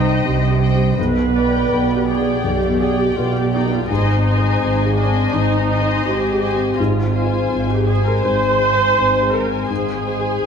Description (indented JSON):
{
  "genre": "cinematic, emotional film score for orchestra",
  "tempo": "82 BPM",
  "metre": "4/4",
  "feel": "rubato",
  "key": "unclear",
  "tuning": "A4 = 435 Hz",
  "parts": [
    { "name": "muted studio violin section", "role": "melody", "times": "0.0-10.5 s", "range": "G5 to Ab5", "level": "-29 LUFS", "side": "left 6 dB", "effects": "none" },
    { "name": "muted symphonic violin section", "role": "second line", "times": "0.0-10.5 s", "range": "C5 to Eb5", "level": "-26 LUFS", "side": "left 2 dB", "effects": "none" },
    { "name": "felt-muted upright piano", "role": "accompaniment", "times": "0.0-10.5 s", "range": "B1 to D5", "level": "-22 LUFS", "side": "left 5 dB", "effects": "none" },
    { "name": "muted studio viola section", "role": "accompaniment", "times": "0.0-10.5 s", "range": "D4 to C5", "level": "-20 LUFS", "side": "right 2 dB", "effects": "none" },
    { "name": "muted studio cello section", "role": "bass", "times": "0.0-10.5 s", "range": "Ab2 to C3", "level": "-22 LUFS", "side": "right 4 dB", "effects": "none" },
    { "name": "muted studio double bass section", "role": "bass", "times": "0.0-10.5 s", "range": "Ab1 to C2", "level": "-22 LUFS", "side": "right 1 dB", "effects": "none" }
  ],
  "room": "wet scoring stage reverb, RT60 1.9 s",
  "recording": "minimal, uncompressed stereo recording",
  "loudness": "-15 LUFS",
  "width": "side -6 dB against mid",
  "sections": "0.0-10.5 A section",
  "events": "none",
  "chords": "0.0 Cm; 1.0 G/B; 3.9 Ab; 6.8 Fm/Ab",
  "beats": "0.25 | 0.98 1.71 2.44 3.16 | 3.89 4.62 5.33 6.06 | 6.79 7.51 8.24 8.97 | 9.70 10.44"
}